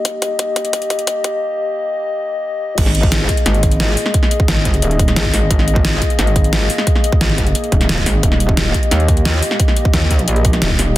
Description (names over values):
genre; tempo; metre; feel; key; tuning
dark technical drum and bass; 176 BPM; 4/4; straight; unclear; A4 = 440 Hz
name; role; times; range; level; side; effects
dark analog pad; sustained chords; 0.0-11.0 s; A#3 to D#5; -21 LUFS; left 2 dB; chorus, sidechain pumping
dubstep drum kit; drums; 0.1-10.9 s; crash cymbal, hi-hat, snare drum; -18 LUFS; equal; overdrive, high-pass filter on hats, high-pass filter on cymbals, high-pass filter on snare, high-pass filter on room
electronic kick drum; drums; 0.1-10.8 s; none; -16 LUFS; equal; overdrive, high-pass filter on kick, high-pass filter on room
metallic wobble bass; bass; 2.8-10.9 s; D#1 to D#2; -16 LUFS; equal; chorus, overdrive, sidechain pumping
room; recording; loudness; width
light reverb; dense, heavily limited modern master, high-pass filter; -13 LUFS; side -15 dB against mid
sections
0.0-2.8 A section; 2.8-11.0 B section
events
build-up 0.0-2.8; drum fill 0.0-1.4; filter sweep on analog synth pad 0.0-2.8; filter sweep 0.0-2.8; drop 2.8-11.0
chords
0.0 D#; 2.8 G#sus2; 8.2 D#